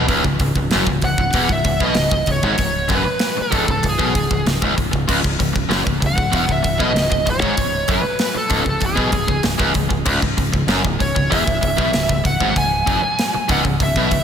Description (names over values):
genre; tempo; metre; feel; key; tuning
heavy metal; 96 BPM; 4/4; straight; C# minor; A4 = 440 Hz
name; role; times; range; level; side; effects
distorted electric guitar; riff; 0.0-14.2 s; C#2 to B2; -20 LUFS; equal; overdrive
fingered electric bass; bass; 0.0-14.2 s; C#1 to B1; -24 LUFS; equal; none
tight metal drum kit; drums; 0.1-14.2 s; crash cymbal, hi-hat, kick drum, snare drum; -21 LUFS; equal; none
smooth overdriven lead guitar; melody; 1.0-14.2 s; G#4 to G#5; -21 LUFS; right 1 dB; slapback echo
room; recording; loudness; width
moderate lush hall reverb, RT60 2.7 s; big arena sound; -15 LUFS; side -8 dB against mid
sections
0.1-14.2 A section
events
none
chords
none